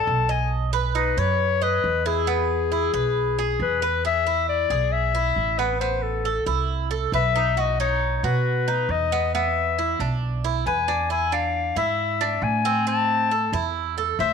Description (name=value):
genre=latin, Cuban son and guajira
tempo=136 BPM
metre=4/4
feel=straight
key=unclear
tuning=A4 = 441 Hz
part: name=clear clarinet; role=melody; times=0.0-14.3 s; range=G#4 to A5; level=-23 LUFS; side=left 9 dB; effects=none
part: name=Cuban tres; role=arpeggios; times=0.0-14.3 s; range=B3 to D#5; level=-26 LUFS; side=right 12 dB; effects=none
part: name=upright bass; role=bass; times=0.0-14.3 s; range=A1 to B2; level=-26 LUFS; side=right 2 dB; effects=none
room=light reverb, small room ambience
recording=1960s-style stereo with parts hard left and right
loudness=-20 LUFS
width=side -6 dB against mid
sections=0.0-4.0 A section; 4.0-14.3 B section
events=none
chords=0.0 N.C.; 0.5 B; 2.3 E; 5.8 Amadd9; 7.6 B; 9.3 E7; 12.9 Am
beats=0.07 | 0.51 0.95 1.40 1.84 | 2.28 2.72 3.16 3.60 | 4.04 4.49 4.93 5.37 | 5.81 6.25 6.69 7.13 | 7.57 8.02 8.46 8.90 | 9.34 9.78 10.22 10.66 | 11.10 11.54 11.99 12.43 | 12.87 13.31 13.75 14.19